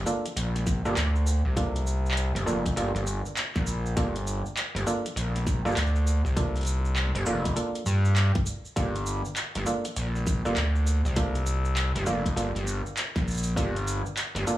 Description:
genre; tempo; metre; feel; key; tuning
glitch hop; 100 BPM; 4/4; swing 63% on 16ths; G minor; A4 = 440 Hz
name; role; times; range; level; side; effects
gritty driven synth bass; bass; 0.0-14.4 s; F1 to G2; -26 LUFS; equal; tube saturation
muted clav; stabs; 0.1-14.6 s; Bb3 to A4; -32 LUFS; right 1 dB; vintage 12-bit sampler grit, sidechain pumping, tape echo
drum and bass drum kit; drums; 0.1-14.6 s; handclaps, hi-hat, shaker, snare drum; -33 LUFS; equal; none
electronic kick drum; drums; 0.7-13.7 s; none; -28 LUFS; equal; none
room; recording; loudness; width
little or no reverb; small room reverb; -25 LUFS; side -14 dB against mid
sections
0.0-14.6 A section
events
none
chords
0.0 Gm7

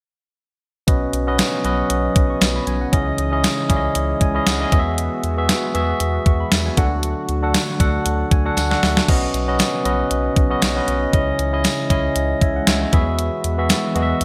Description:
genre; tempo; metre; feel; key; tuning
1980s-style pop; 117 BPM; 4/4; swing 55% on 16ths; unclear; A4 = 440 Hz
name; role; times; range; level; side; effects
barky tine electric piano; accompaniment; 0.9-14.2 s; B2 to C#6; -23 LUFS; equal; none
chorused pulse-width pad; sustained chords; 0.9-14.2 s; C#3 to D#5; -30 LUFS; equal; none
round analog bass; bass; 0.9-14.2 s; B1 to E2; -26 LUFS; equal; none
clean 12-bit digital drum machine; drums; 0.9-14.2 s; crash cymbal, hi-hat, kick drum, snare drum; -21 LUFS; equal; gated reverb
tambourine; percussion; 1.4-13.8 s; none; -36 LUFS; equal; none
room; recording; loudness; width
moderate plate reverb, RT60 1.5 s, digital ambience; bright 1980s-style digital production; -19 LUFS; mono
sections
0.9-14.2 A section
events
tine electric piano fill 4.0-5.0, 8.1-9.1, 12.2-13.2; drum fill 8.6-9.1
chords
0.9 Badd9; 2.9 C#madd9; 4.7 Eadd9; 6.8 D; 9.1 Badd9; 11.1 C#madd9; 12.9 Eadd9

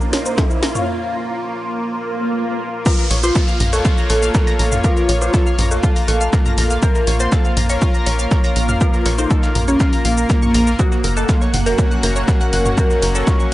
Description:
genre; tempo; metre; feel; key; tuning
melodic techno; 121 BPM; 4/4; straight; Bb harmonic minor; A4 = 440 Hz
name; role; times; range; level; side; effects
fat analog lead; melody; 0.0-13.5 s; Bb3 to Db5; -24 LUFS; equal; lush chorus, cassette tape, sidechain pumping, analog delay
lush unison pad; sustained chords; 0.0-13.5 s; Bb3 to Gb5; -25 LUFS; equal; chorus, phaser, sidechain pumping
tight sequenced synth; arpeggios; 0.0-13.5 s; Db4 to Bb6; -26 LUFS; equal; chorus, sidechain pumping, tape echo
punchy analog drum machine; drums; 0.0-13.5 s; hi-hat, shaker, snare drum, toms; -24 LUFS; equal; overdrive
riser, swell and downlifter; sound effects; 0.0-6.8 s; none; -27 LUFS; right 2 dB; none
granular cloud pad; texture; 0.1-13.5 s; Bb3 to Eb5; -32 LUFS; right 2 dB; none
electronic kick drum; drums; 0.4-13.4 s; none; -16 LUFS; equal; overdrive
brassy analog pad; stabs; 0.8-13.5 s; Gb3 to Db5; -26 LUFS; left 3 dB; chorus, sidechain pumping, tape echo
dark detuned synth bell; second line; 2.9-13.5 s; Db4 to Db5; -26 LUFS; left 1 dB; chorus, sidechain pumping, tape echo
dusty soul sampler-style drum kit; drums; 2.9-13.4 s; hi-hat, shaker, snare drum; -33 LUFS; right 1 dB; none
tight sequencer bass; bass; 3.1-13.2 s; Gb1 to Bb1; -19 LUFS; equal; sidechain pumping
room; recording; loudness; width
little or no reverb; dry, gritty hardware recording, nothing above 10.6 kHz; -14 LUFS; side -16 dB against mid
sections
0.0-2.9 A section; 2.9-13.5 B section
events
build-up 0.0-2.9; drum fill 0.0-0.9; riser 0.0-0.9; break 0.9-2.9; swell 2.0-2.9; drop 2.9-13.5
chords
0.0 Bbm; 10.8 Gb

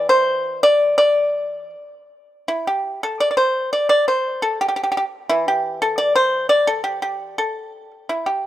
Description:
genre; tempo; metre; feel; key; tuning
chinese traditional, Chinese solo plucked strings; 79-88 BPM; 2/4; rubato; unclear; A4 = 440 Hz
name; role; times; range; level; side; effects
pipa; solo; 0.0-8.5 s; A2 to D5; -17 LUFS; equal; none
room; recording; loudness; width
light reverb, studio reverb; rough home demo mix; -17 LUFS; side -13 dB against mid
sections
0.0-2.5 A section; 2.5-8.5 B section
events
none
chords
none

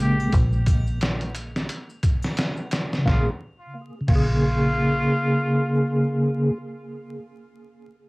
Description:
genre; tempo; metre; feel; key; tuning
trip hop; 88 BPM; 4/4; swing 58% on 16ths; Bb dorian; A4 = 440 Hz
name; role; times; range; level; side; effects
trumpet with straight mute; melody; 0.0-6.5 s; F4 to G4; -30 LUFS; equal; cassette tape, tape echo
percussive tonewheel organ; accompaniment; 0.0-6.6 s; Db3 to Ab4; -23 LUFS; equal; fast rotary speaker, tremolo, cassette tape, tape echo
deep dub fingered electric bass; bass; 0.0-5.1 s; Bb1; -25 LUFS; equal; none
maracas and triangle; percussion; 0.2-3.0 s; none; -46 LUFS; left 2 dB; none
trip hop sampler-style drum kit; drums; 0.3-4.3 s; crash cymbal, hi-hat, kick drum, snare drum; -24 LUFS; equal; none
room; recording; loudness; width
light reverb; home recording on cassette, vinyl crackle; -20 LUFS; side -27 dB against mid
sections
0.0-3.1 A section; 3.1-5.8 B section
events
none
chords
0.0 N.C.; 3.1 Bbm7

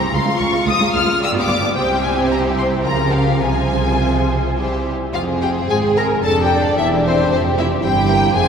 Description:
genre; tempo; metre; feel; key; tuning
quick classical-period movement for string orchestra; 103-116 BPM; 3/4; rubato; F minor; A4 = 440 Hz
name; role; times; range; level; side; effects
warm studio violin section; melody; 0.0-8.5 s; C5 to F6; -20 LUFS; left 3 dB; none
warm symphonic violin section; second line; 0.0-8.5 s; Bb3 to F5; -21 LUFS; left 2 dB; none
rich studio viola section; accompaniment; 0.0-8.5 s; F3 to Bb4; -22 LUFS; right 1 dB; none
warm studio cello section; bass; 0.0-8.5 s; Db2 to Db3; -22 LUFS; right 2 dB; none
warm studio double bass section; bass; 0.1-8.5 s; E1 to Db2; -23 LUFS; right 3 dB; none
room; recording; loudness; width
wet cathedral reverb, RT60 4.8 s; none; -15 LUFS; side -7 dB against mid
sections
0.0-5.1 A section; 5.1-8.5 B section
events
none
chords
0.1 Db; 1.2 G7; 1.7 C; 2.8 Bbm/Db; 3.4 Fm/C; 4.6 C; 5.1 Fm; 6.2 F69; 6.8 C/E

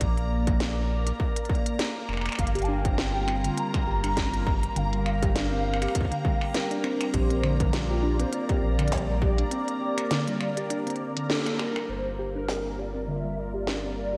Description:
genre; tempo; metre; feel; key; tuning
IDM; 101 BPM; 4/4; swing 56% on 16ths; G minor; A4 = 440 Hz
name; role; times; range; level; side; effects
phased analog pad; sustained chords; 0.0-14.2 s; G3 to D5; -37 LUFS; equal; phaser, chorus, vintage 12-bit sampler grit, sidechain pumping
round analog bass; bass; 0.0-14.2 s; F1 to Bb1; -31 LUFS; equal; tube saturation
electronic kick drum; drums; 0.0-9.4 s; none; -30 LUFS; equal; distortion
industrial drum kit; drums; 0.0-13.8 s; finger snaps, hi-hat, snare drum; -36 LUFS; equal; none
bubbling stepped-filter texture; texture; 0.0-14.2 s; Bb3 to Bb5; -42 LUFS; equal; chorus, built-in reverb
warbly nostalgic lead; melody; 2.4-14.2 s; F4 to Bb5; -35 LUFS; equal; ensemble chorus, slapback echo, tape echo
harp-like synth pluck; arpeggios; 2.6-14.2 s; D3 to G4; -33 LUFS; equal; chorus, cassette tape, digital delay
room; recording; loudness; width
wet lush hall reverb, RT60 2.5 s; big arena sound; -27 LUFS; mono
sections
0.0-11.9 A section; 11.9-14.2 B section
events
break 9.5-11.9; band accent 11.3; filter sweep on analog synth pad 11.9-14.2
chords
0.0 Bb; 2.4 Gm7; 7.1 Bb; 11.9 Gm7

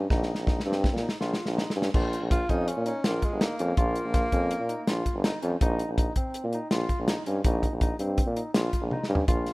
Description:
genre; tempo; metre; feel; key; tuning
progressive instrumental, band music in an uneven meter; 164 BPM; 5/4; straight; unclear; A4 = 440 Hz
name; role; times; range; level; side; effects
barky tine electric piano; arpeggios; 0.0-9.5 s; C4 to F4; -34 LUFS; left 1 dB; none
clear tuba; bass; 0.0-9.5 s; G1 to Bb2; -28 LUFS; equal; none
warm soul drum kit; drums; 0.1-9.5 s; crash cymbal, hi-hat, kick drum, snare drum, toms; -27 LUFS; equal; none
breathy tenor saxophone; melody; 2.3-5.2 s; Ab3 to F4; -31 LUFS; equal; none
room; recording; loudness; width
light reverb, studio reverb; rough home demo mix; -24 LUFS; side -23 dB against mid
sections
0.0-1.9 A section; 1.9-9.5 A section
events
drum fill 0.1-1.9, 8.9-9.3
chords
0.0 Cm/Bb; 1.9 Bbm; 5.6 Cm/Bb

